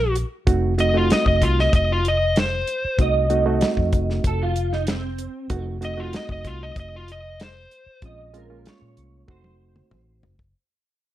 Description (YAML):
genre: straight-eighth soul blues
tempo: 95 BPM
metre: 4/4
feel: straight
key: unclear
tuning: A4 = 440 Hz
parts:
  - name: overdriven slide guitar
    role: melody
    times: 0.0-8.0 s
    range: F4 to Eb5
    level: -24 LUFS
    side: left 1 dB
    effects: slapback echo
  - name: vintage muted fingered electric bass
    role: bass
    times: 0.0-10.5 s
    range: F1 to Bb2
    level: -24 LUFS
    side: left 1 dB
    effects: none
  - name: warm soul drum kit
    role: drums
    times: 0.2-10.5 s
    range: hi-hat, kick drum, snare drum, toms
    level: -22 LUFS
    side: equal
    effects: none
  - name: reed electric piano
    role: accompaniment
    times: 0.5-10.3 s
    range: Ab3 to Gb4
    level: -26 LUFS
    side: right 4 dB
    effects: none
  - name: electric guitar through a small old amp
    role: second line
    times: 3.0-10.4 s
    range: C4 to Eb5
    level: -25 LUFS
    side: right 3 dB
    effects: ensemble chorus, slapback echo
room: light reverb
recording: none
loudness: -19 LUFS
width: side -13 dB against mid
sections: 0.0-10.5 A section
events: fade-out 0.0-10.5; drum fill 9.3-10.5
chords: 0.5 F7b9; 8.0 Bbm9; 9.3 F7b9